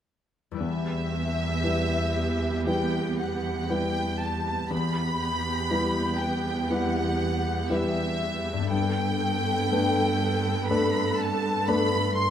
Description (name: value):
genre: cinematic, emotional film score for orchestra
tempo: 60 BPM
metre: 4/4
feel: rubato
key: E minor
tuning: A4 = 441 Hz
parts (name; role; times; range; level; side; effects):
- concert harp; arpeggios; 0.5-12.3 s; E2 to B4; -35 LUFS; left 8 dB; none
- rich studio violin section; melody; 0.6-12.3 s; E5 to C6; -29 LUFS; equal; none
- clear grand piano; accompaniment; 0.6-12.3 s; E2 to B4; -29 LUFS; left 2 dB; none
- rich studio viola section; accompaniment; 0.6-12.3 s; B3 to A4; -31 LUFS; right 2 dB; none
- rich studio cello section; bass; 0.6-12.3 s; E2 to G2; -30 LUFS; right 2 dB; none
room: moderate scoring stage reverb, RT60 1.9 s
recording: close, detailed microphones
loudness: -24 LUFS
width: side -9 dB against mid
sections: 0.6-12.3 A section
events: none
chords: 0.6 Em; 8.7 Gadd9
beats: | 0.62 1.65 2.67 3.70 | 4.71 5.71 6.70 7.71 | 8.71 9.71 10.69 11.68